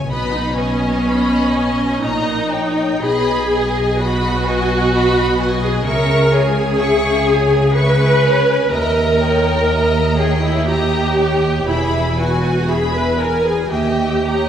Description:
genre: classical, slow romantic movement for string orchestra.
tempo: 62 BPM.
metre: 3/4.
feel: uneven beats, rubato.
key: G# minor.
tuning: A4 = 440 Hz.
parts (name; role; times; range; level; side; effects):
rich studio violin section; melody; 0.0-14.5 s; G5 to C#6; -25 LUFS; left 2 dB; none.
clear studio violin section; second line; 0.0-14.5 s; G#4 to G#5; -24 LUFS; left 3 dB; none.
rich studio cello section; bass; 0.0-14.5 s; D#2 to C#3; -20 LUFS; right 1 dB; none.
warm studio double bass section; bass; 0.0-14.5 s; E1 to D#2; -22 LUFS; right 1 dB; none.
rich studio viola section; accompaniment; 0.1-14.5 s; B3 to B4; -17 LUFS; equal; none.
room: wet scoring stage reverb, RT60 1.8 s.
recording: heard from further back in the room.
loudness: -14 LUFS.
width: side -9 dB against mid.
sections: 0.0-14.5 A section.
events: none.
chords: 0.1 G#m/B; 2.0 D#7/A#; 3.0 G#m/B; 5.9 C#m; 8.7 D#7b9; 11.7 E; 13.7 D#7b9.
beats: | 0.10 1.06 2.02 | 3.04 4.00 4.93 | 5.87 6.81 7.76 | 8.73 9.70 10.68 | 11.67 12.68 13.71.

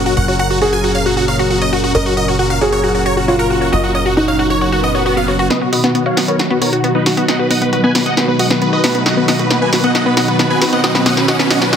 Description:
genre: uplifting trance.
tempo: 135 BPM.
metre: 4/4.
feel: straight.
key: unclear.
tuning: A4 = 440 Hz.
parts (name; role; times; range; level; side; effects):
big supersaw lead; melody; 0.0-11.8 s; D#4 to Ab5; -18 LUFS; right 1 dB; phaser, low-pass filter, ping-pong delay.
felt-muted upright piano; second line; 0.0-5.4 s; Eb4 to Bb4; -19 LUFS; equal; tape echo.
lush unison pad; sustained chords; 0.0-11.8 s; Bb2 to Bb4; -18 LUFS; left 1 dB; chorus.
wide unison pluck; arpeggios; 0.0-11.8 s; B3 to Db5; -19 LUFS; left 1 dB; digital delay.
tight sequencer bass; bass; 0.0-5.5 s; Gb1; -21 LUFS; equal; none.
swell, riser and reverse cymbal; sound effects; 4.8-11.8 s; none; -22 LUFS; right 1 dB; none.
punchy analog drum machine; drums; 5.5-11.8 s; hi-hat, snare drum; -17 LUFS; equal; high-pass filter on snare, high-pass filter on hats, high-pass filter on room.
room: moderate lush hall reverb, RT60 1.5 s, digital ambience.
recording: heavily compressed radio sound.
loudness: -12 LUFS.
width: side -8 dB against mid.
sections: 0.0-5.5 A section; 5.5-11.8 B section.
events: filter sweep on synth arpeggio sound 0.0-5.5; swell 4.8-5.5; build-up 5.5-11.8; drum fill 5.5-11.8; riser 5.5-11.8; filter sweep on supersaw synth 5.5-11.8.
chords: 0.0 Gb; 5.5 B.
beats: | 0.17 0.62 1.06 1.50 | 1.95 2.39 2.84 3.28 | 3.73 4.17 4.62 5.06 | 5.50 5.95 6.39 6.84 | 7.28 7.73 8.17 8.62 | 9.06 9.51 9.95 10.39 | 10.84 11.28 11.73.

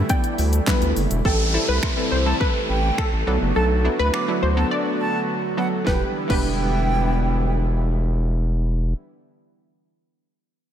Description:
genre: dance-pop.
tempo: 104 BPM.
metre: 4/4.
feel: straight.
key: E minor.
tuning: A4 = 440 Hz.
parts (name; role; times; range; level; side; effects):
wide unison pluck; melody; 0.0-9.6 s; A4 to A5; -27 LUFS; equal; slapback echo, ping-pong delay.
soft supersaw; sustained chords; 0.0-8.9 s; C3 to F#4; -27 LUFS; right 1 dB; sidechain pumping.
round analog bass; bass; 0.0-8.9 s; E1 to D2; -21 LUFS; equal; sidechain pumping.
analog pluck; accompaniment; 0.1-9.6 s; E3 to D5; -27 LUFS; right 1 dB; chorus, sidechain pumping, slapback echo.
pop drum kit; drums; 0.1-6.5 s; crash cymbal, finger snaps, handclaps, hi-hat, kick drum, shaker, snare drum; -24 LUFS; equal; none.
breathy bright silver concert flute; melody; 1.2-7.6 s; F#5 to D6; -29 LUFS; right 2 dB; sidechain pumping, slapback echo, ping-pong delay.
downlifter; sound effects; 1.3-5.9 s; none; -29 LUFS; equal; none.
room: moderate lush hall reverb, RT60 2.0 s.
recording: big arena sound.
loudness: -19 LUFS.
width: side -10 dB against mid.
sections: 0.0-1.3 A section; 1.3-5.9 B section; 5.9-8.2 C section.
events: break 4.7-5.9.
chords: 0.0 Em7; 1.3 Am7; 3.3 Bm7; 5.9 Em7.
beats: 0.10 0.67 | 1.25 1.83 2.40 2.98 | 3.56 4.13 4.71 5.29 | 5.87 6.44 7.02 7.60.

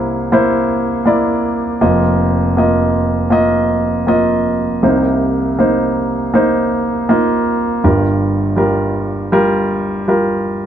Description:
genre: folk.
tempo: 80 BPM.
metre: 4/4.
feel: straight.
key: unclear.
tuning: A4 = 443 Hz.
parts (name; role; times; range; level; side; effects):
warm grand piano; solo; 0.0-10.7 s; F1 to Eb5; -12 LUFS; equal; none.
room: moderate studio reverb, RT60 0.5 s.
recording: dark, warm production.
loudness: -12 LUFS.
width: side -9 dB against mid.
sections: 0.0-10.7 A section.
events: none.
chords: 0.0 C7; 1.8 F7sus4; 4.8 Cm7; 7.8 Gm7.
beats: 0.31 1.06 | 1.81 2.56 3.31 4.07 | 4.83 5.59 6.34 7.09 | 7.84 8.59 9.34 10.09.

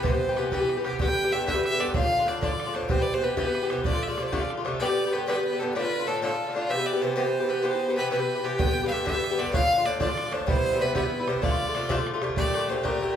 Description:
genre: celtic folk, Celtic jig.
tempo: 127 BPM (dotted quarters).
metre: 6/8.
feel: straight.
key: D dorian.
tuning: A4 = 440 Hz.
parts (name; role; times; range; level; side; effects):
clear fiddle; melody; 0.0-13.2 s; F4 to G5; -28 LUFS; equal; none.
Irish bouzouki; accompaniment; 0.0-13.2 s; G2 to G4; -26 LUFS; left 1 dB; none.
bodhran; percussion; 0.0-4.8, 8.6-13.1 s; none; -30 LUFS; right 2 dB; none.
room: wet large studio reverb, RT60 1.1 s.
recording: band playing live in one room.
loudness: -23 LUFS.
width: side -9 dB against mid.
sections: 0.0-4.8 A section; 4.8-12.4 A section.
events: none.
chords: 0.0 Cmaj7; 1.0 G; 2.0 Dm; 2.9 Cmaj7; 3.9 Dm7; 4.8 G; 5.8 Dm; 6.7 Cmaj7; 8.6 G; 9.5 Dm; 10.5 Cmaj7; 11.4 Dm7; 12.4 Gmadd9.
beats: | 0.05 0.52 | 1.00 1.48 | 1.95 2.43 | 2.90 3.38 | 3.85 4.33 | 4.80 5.28 | 5.75 6.22 | 6.70 7.17 | 7.64 8.12 | 8.59 9.06 | 9.53 10.01 | 10.48 10.95 | 11.42 11.90 | 12.37 12.84.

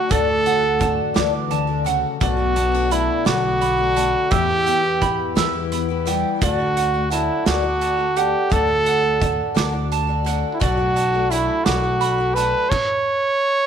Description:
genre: indie folk with a building arrangement.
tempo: 57 BPM (dotted quarters).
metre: 6/8.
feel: straight.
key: D major.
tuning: A4 = 440 Hz.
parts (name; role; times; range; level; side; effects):
warm trumpet; melody; 0.0-13.7 s; E4 to C#5; -20 LUFS; right 2 dB; none.
fingerpicked steel-string acoustic guitar; accompaniment; 0.0-6.4 s; E2 to F#4; -27 LUFS; left 14 dB; none.
picked twelve-string acoustic guitar; accompaniment; 0.0-12.7 s; B2 to G4; -27 LUFS; left 14 dB; none.
bowl-back mandolin; arpeggios; 0.0-12.7 s; D5 to E6; -26 LUFS; right 12 dB; none.
upright bass; bass; 0.1-12.5 s; B1 to E2; -25 LUFS; left 1 dB; none.
loose indie drum kit; drums; 0.1-12.9 s; crash cymbal, hi-hat, kick drum, snare drum; -24 LUFS; right 2 dB; none.
room: light reverb, studio reverb.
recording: 1960s-style stereo with parts hard left and right.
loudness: -17 LUFS.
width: side -8 dB against mid.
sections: 0.0-13.7 A section.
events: none.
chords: 0.0 D; 2.2 Bm7; 4.3 Em; 6.4 D; 10.6 Bm7; 12.7 N.C..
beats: | 0.10 1.16 | 2.21 3.26 | 4.31 5.37 | 6.42 7.47 | 8.52 9.57 | 10.62 11.66 | 12.71.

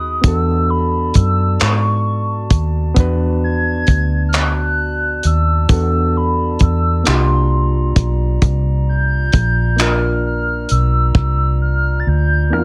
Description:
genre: slow six-eight R&B.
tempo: 44 BPM (dotted quarters).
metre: 6/8.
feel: straight.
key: unclear.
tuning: A4 = 444 Hz.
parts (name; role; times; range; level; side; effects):
hollow clarinet-like synth lead; melody; 0.0-12.6 s; B5 to A6; -24 LUFS; equal; chorus.
overdriven reed electric piano; accompaniment; 0.0-12.6 s; Bb3 to B4; -26 LUFS; equal; spring reverb.
glass harmonica; sustained chords; 0.0-12.6 s; F4 to B5; -32 LUFS; equal; none.
vintage muted fingered electric bass; bass; 0.0-12.6 s; Bb1 to G#2; -18 LUFS; equal; none.
warm soul drum kit; drums; 0.2-11.4 s; handclaps, hi-hat, kick drum; -17 LUFS; equal; none.
room: little or no reverb.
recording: none.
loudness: -16 LUFS.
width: mono.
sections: 0.0-12.6 A section.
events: drum fill 11.1-12.6.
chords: 0.2 E9sus4; 7.1 C9sus4.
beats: | 0.24 1.60 | 2.96 4.33 | 5.69 7.05 | 8.42 9.78 | 11.15 12.51.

